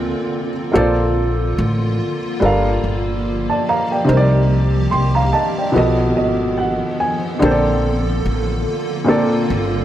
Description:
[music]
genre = lo-fi hip hop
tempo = 72 BPM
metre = 4/4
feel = swing 58% on 16ths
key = Bb major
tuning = A4 = 440 Hz
[part]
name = dark upright piano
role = accompaniment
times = 0.0-9.8 s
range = Bb2 to C6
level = -18 LUFS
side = equal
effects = cassette tape, plate reverb
[part]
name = granular cloud pad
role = sustained chords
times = 0.0-9.8 s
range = D3 to A4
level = -23 LUFS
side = right 1 dB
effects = built-in reverb
[part]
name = upright bass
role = bass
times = 0.0-9.8 s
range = G1 to D2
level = -19 LUFS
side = equal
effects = none
[sound]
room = moderate studio reverb, RT60 0.6 s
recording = dry, gritty hardware recording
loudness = -15 LUFS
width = side -12 dB against mid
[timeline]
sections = 0.7-9.8 A section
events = none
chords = 0.0 Bbmaj7; 2.4 Gm9; 4.1 Cm7; 5.7 B7#11; 7.4 Bbmaj7

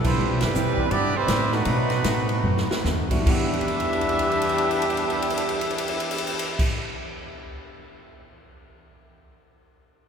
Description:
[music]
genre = jazz, big band swing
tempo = 141-166 BPM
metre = 4/4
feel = swing 63% on 8ths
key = E minor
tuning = A4 = 440 Hz
[part]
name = warm trumpet section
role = melody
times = 0.0-6.6 s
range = G3 to E5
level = -26 LUFS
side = right 1 dB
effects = none
[part]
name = warm trombone section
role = second line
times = 0.0-6.6 s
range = D#3 to G4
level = -30 LUFS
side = right 2 dB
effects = none
[part]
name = vintage hollow-body jazz guitar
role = accompaniment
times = 0.0-6.9 s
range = B2 to E4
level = -33 LUFS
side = left 3 dB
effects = none
[part]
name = warm concert grand piano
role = accompaniment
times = 0.0-6.7 s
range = E2 to F#5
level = -33 LUFS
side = right 1 dB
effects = none
[part]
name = upright bass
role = bass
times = 0.0-6.6 s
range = G1 to B2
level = -27 LUFS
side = equal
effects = none
[part]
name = swinging big-band drum kit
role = drums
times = 0.0-8.1 s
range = crash cymbal, hi-hat, kick drum, ride cymbal, snare drum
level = -28 LUFS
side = equal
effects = none
[sound]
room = wet cathedral reverb, RT60 5.5 s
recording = recorded in a church or concert hall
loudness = -21 LUFS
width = side -7 dB against mid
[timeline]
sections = 0.2-3.3 A section; 3.3-6.7 B section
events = slowing down 0.2-3.3; band accent 0.4; drum fill 2.4-2.8, 3.5-6.6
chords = 0.2 Cmaj7; 1.7 B7b9; 3.3 Em9

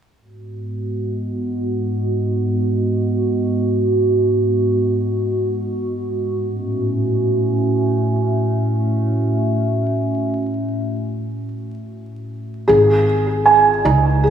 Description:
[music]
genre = trip hop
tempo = free time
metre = none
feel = none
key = G# phrygian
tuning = A4 = 442 Hz
[part]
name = warbly tape-like pad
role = sustained chords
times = 0.5-12.6 s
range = G#2 to F#4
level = -18 LUFS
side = right 1 dB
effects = chorus, built-in reverb
[part]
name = felt-muted upright piano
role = arpeggios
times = 12.7-14.3 s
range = D#4 to G#5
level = -12 LUFS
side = right 2 dB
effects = diffuse ambient delay
[part]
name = upright bass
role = bass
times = 12.7-14.3 s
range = G#1 to C#2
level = -18 LUFS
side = equal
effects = none
[sound]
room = wet lush hall reverb, RT60 1.9 s, small room ambience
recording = dreamy mix soaked in reverb, vinyl crackle, low-pass filter, studio reverb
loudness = -16 LUFS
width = side -8 dB against mid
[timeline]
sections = 0.2-12.7 A section; 12.7-14.3 B section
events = filter sweep 0.2-12.7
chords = 0.2 G#m7; 6.4 A6; 12.7 G#5

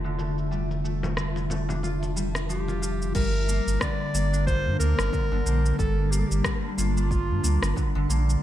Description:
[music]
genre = organic downtempo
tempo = 91 BPM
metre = 4/4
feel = swing 58% on 16ths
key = G dorian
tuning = A4 = 440 Hz
[part]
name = granular cloud pad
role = sustained chords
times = 0.0-8.4 s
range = G3 to A5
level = -34 LUFS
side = left 2 dB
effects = built-in reverb, sidechain pumping
[part]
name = concert harp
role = arpeggios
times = 0.0-8.4 s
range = D3 to F4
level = -29 LUFS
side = left 1 dB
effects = ping-pong delay
[part]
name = warm sub bass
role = bass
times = 0.0-8.4 s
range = F1 to G2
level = -26 LUFS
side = right 1 dB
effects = sidechain pumping
[part]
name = organic electronic drum kit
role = drums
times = 0.1-8.4 s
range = crash cymbal, rim click, shaker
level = -32 LUFS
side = equal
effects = studio reverb, gated reverb
[part]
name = congas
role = percussion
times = 0.2-2.8 s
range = none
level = -37 LUFS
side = left 3 dB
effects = none
[part]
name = warm clarinet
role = melody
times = 2.5-8.1 s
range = F4 to D5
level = -32 LUFS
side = equal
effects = digital delay
[part]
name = electronic kick drum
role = drums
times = 3.2-7.9 s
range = none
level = -28 LUFS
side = right 1 dB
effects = studio reverb
[sound]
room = light reverb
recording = bright 1980s-style digital production, low-pass filter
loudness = -23 LUFS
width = side -12 dB against mid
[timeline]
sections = 0.0-3.2 A section; 3.2-8.4 B section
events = filter sweep on ambient pad 0.0-3.2; filter sweep 0.0-3.2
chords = 0.0 Fmaj9; 3.2 Gm9

